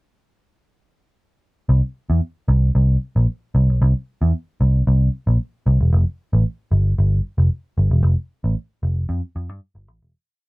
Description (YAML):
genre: funk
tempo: 114 BPM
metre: 4/4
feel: straight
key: unclear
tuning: A4 = 440 Hz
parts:
  - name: vintage muted picked electric bass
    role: solo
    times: 1.7-10.1 s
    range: E1 to G2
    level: -15 LUFS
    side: equal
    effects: none
room: moderate booth ambience, RT60 0.2 s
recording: dry, close 1970s-style studio recording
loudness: -17 LUFS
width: side -24 dB against mid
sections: 1.7-10.1 breakdown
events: fade-out 8.0-10.1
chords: none